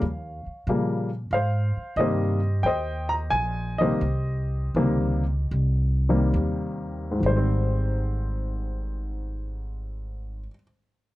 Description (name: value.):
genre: jazz.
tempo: 65-93 BPM.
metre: 4/4.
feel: swing 69% on 8ths.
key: Ab major.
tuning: A4 = 441 Hz.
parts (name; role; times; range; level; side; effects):
dark baby grand piano; melody; 0.0-10.6 s; Ab2 to Bb5; -26 LUFS; left 1 dB; none.
upright bass; bass; 0.0-10.5 s; Ab1 to Bb2; -26 LUFS; equal; none.
room: little or no reverb.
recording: dry, close 1970s-style studio recording.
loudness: -23 LUFS.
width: side -16 dB against mid.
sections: 0.0-7.2 A section; 7.2-10.9 B section.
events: slowing down 1.3-7.2.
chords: 0.0 Eb7; 1.3 Abmaj7 (rootless); 7.2 Abmaj7.